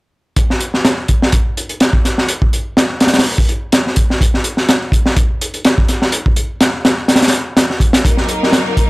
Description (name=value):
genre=breakbeat, breaks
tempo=125 BPM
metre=4/4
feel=swing 56% on 16ths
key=Eb minor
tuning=A4 = 441 Hz
part: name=crunchy breakbeat drum kit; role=drums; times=0.4-8.9 s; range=hi-hat, kick drum, snare drum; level=-12 LUFS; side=equal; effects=none
part: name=clear studio string section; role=sustained chords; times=8.0-8.9 s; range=Gb3 to Bb4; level=-18 LUFS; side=left 1 dB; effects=sidechain pumping
room=light reverb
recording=none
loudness=-12 LUFS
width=side -22 dB against mid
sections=0.4-8.9 A section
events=none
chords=0.4 Ebm